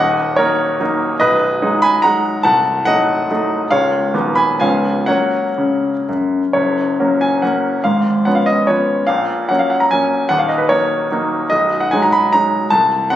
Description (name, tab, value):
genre	classical, romantic triple-time dance for piano with dotted rhythms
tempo	112-159 BPM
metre	3/4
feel	rubato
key	F# major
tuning	A4 = 440 Hz
part	bright grand piano	solo	0.0-13.2 s	B0 to B5	-13 LUFS	equal	none
room	moderate recital hall reverb, RT60 1.7 s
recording	recorded on a phone in the room, studio reverb, nothing above 11.0 kHz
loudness	-13 LUFS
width	side -12 dB against mid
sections	0.0-6.5 A section; 6.5-13.2 A section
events	none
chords	0.0 D#m7; 1.2 G#m7/B; 2.4 Cdim7; 3.7 C#; 4.1 B/D#; 4.6 C#7; 5.1 F#; 7.8 C#7/G#; 9.1 F#/A#; 10.3 D#m7; 11.5 G#m7/B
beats	0.38 0.80 | 1.21 1.61 2.04 | 2.44 2.86 3.30 | 3.71 4.13 4.60 | 5.07 5.58 6.08 | 6.55 7.00 7.42 | 7.84 8.26 8.69 | 9.08 9.49 9.91 | 10.30 10.70 11.11 | 11.50 11.92 12.33 | 12.71 13.11